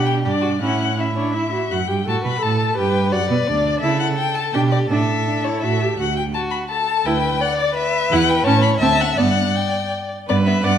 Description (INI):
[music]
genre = quick classical-period movement for string quartet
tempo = 168 BPM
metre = 3/4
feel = straight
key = unclear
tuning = A4 = 440 Hz
[part]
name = rich violin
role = melody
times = 0.0-10.8 s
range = B4 to B5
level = -22 LUFS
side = left 7 dB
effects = none
[part]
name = rich violin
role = second line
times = 0.0-10.7 s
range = B3 to E5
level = -23 LUFS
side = left 2 dB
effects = none
[part]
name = warm viola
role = accompaniment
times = 0.0-10.8 s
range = B3 to D5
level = -23 LUFS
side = right 3 dB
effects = none
[part]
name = clear cello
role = bass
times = 0.0-10.8 s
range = D2 to C#3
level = -22 LUFS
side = right 4 dB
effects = none
[sound]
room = wet recital hall reverb, RT60 1.5 s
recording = none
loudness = -17 LUFS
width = side -9 dB against mid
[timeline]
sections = 0.0-1.7 A section; 1.7-10.3 B section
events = none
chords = 0.0 G/B; 0.6 A; 1.7 F#madd11; 2.8 Gmaj7; 3.8 A/C#; 4.5 G/B; 4.9 Asus4; 5.6 A5; 6.0 D; 7.1 Em7/D; 8.1 Em; 8.5 A; 8.8 D7; 9.2 G